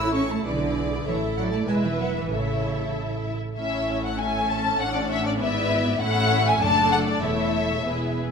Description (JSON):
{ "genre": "quick classical-period movement for string orchestra", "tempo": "98 BPM", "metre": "2/4", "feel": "straight", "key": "A major", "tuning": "A4 = 440 Hz", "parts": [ { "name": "warm symphonic violin section", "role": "melody", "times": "0.0-8.2 s", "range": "B4 to A5", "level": "-26 LUFS", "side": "left 3 dB", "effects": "none" }, { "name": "warm symphonic violin section", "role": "second line", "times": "0.0-8.3 s", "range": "E4 to E6", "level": "-32 LUFS", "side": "left 2 dB", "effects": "none" }, { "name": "rich symphonic viola section", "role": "accompaniment", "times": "0.0-8.3 s", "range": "A3 to B4", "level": "-28 LUFS", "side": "equal", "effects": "none" }, { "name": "dark symphonic cello section", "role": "bass", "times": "0.0-8.3 s", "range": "E2 to E4", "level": "-29 LUFS", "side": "right 2 dB", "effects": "none" }, { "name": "rich studio double bass section", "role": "bass", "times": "0.0-8.3 s", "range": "E1 to B1", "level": "-30 LUFS", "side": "right 2 dB", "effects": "none" } ], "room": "wet recital hall reverb, RT60 1.6 s", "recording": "recorded in a church or concert hall", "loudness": "-21 LUFS", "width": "side -6 dB against mid", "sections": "0.0-3.6 A section; 3.6-8.3 B section", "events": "none", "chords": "0.5 E7/B; 1.1 A5; 1.7 E; 2.3 A; 4.8 D/A; 5.4 E7/G#; 6.0 A; 6.6 D/F#; 7.2 A/E" }